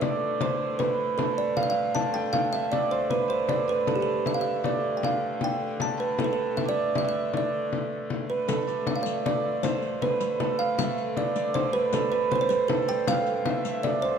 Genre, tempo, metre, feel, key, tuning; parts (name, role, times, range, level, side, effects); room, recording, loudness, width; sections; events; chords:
medieval dance; 156 BPM; 3/4; straight; D dorian; A4 = 442 Hz
kalimba; melody; 0.0-14.2 s; G4 to A5; -26 LUFS; right 3 dB
hammered dulcimer; second line; 0.0-14.2 s; A3 to A5; -34 LUFS; right 5 dB
rich hurdy-gurdy; drone; 0.0-14.2 s; D3 to A3; -36 LUFS; left 2 dB
frame drum; percussion; 0.0-14.0 s; -31 LUFS; left 6 dB
riq; percussion; 8.5-13.8 s; -38 LUFS; left 5 dB
moderate recital hall reverb, RT60 1.7 s; dark, warm production; -24 LUFS; side -7 dB against mid
0.0-8.5 A section; 8.5-14.2 A section